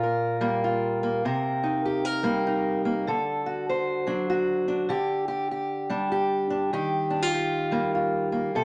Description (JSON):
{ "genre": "folk, solo fingerstyle acoustic guitar", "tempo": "99 BPM", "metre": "3/4", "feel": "swing 63% on 8ths", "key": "unclear", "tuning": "A4 = 440 Hz", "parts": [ { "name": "fingerpicked acoustic archtop guitar", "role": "solo", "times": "0.0-8.6 s", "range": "Bb2 to C5", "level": "-26 LUFS", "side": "equal", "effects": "none" } ], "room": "wet studio reverb, RT60 0.7 s", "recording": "none", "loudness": "-26 LUFS", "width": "mono", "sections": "0.0-8.6 A section", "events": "none", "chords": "0.0 Gm7/Bb; 1.2 Cm7; 3.1 D; 4.9 Dsus4; 6.7 Ebadd9" }